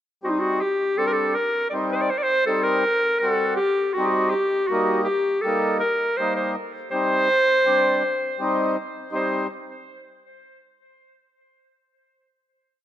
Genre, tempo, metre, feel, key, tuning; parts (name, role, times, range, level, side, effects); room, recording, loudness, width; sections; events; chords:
klezmer; 81 BPM; 3/4; straight; C dorian sharp4; A4 = 442 Hz
clear clarinet; melody; 0.2-9.5 s; Eb4 to D5; -21 LUFS; equal; tape echo
mellow accordion; accompaniment; 0.2-9.5 s; G3 to F#4; -25 LUFS; left 1 dB
moderate recital hall reverb, RT60 1.6 s; close, detailed microphones; -20 LUFS; side -11 dB against mid
0.2-9.1 A section; 9.1-11.4 final chord
0.2 Cm; 4.7 Eb; 6.9 Cm